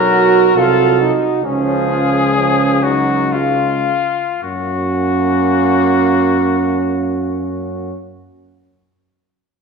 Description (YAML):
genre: classical, hymn-like piece for brass band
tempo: 53-75 BPM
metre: 3/4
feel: rubato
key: F# major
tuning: A4 = 439 Hz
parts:
  - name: clear flugelhorn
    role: melody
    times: 0.0-7.9 s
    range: E#4 to A#4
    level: -18 LUFS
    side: left 5 dB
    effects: none
  - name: dark French horn section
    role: second line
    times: 0.0-7.9 s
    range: C#4 to F#4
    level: -19 LUFS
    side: right 11 dB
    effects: none
  - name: dark trombone section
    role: accompaniment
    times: 0.0-7.9 s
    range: C#4 to F#4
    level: -19 LUFS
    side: right 1 dB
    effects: none
  - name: warm trombone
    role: accompaniment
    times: 0.0-7.9 s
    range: E#3 to A#3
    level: -24 LUFS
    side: right 2 dB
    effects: none
  - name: mellow tuba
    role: bass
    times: 0.0-7.9 s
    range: B1 to F#2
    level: -19 LUFS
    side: left 1 dB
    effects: none
room: wet recital hall reverb, RT60 1.5 s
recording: recorded in a church or concert hall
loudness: -12 LUFS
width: side -5 dB against mid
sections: 0.0-4.4 A section; 4.4-7.6 B section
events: slowing down 0.0-4.4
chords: 0.0 G#m7/B (rootless); 0.6 Cdim7; 1.4 C#; 4.4 F#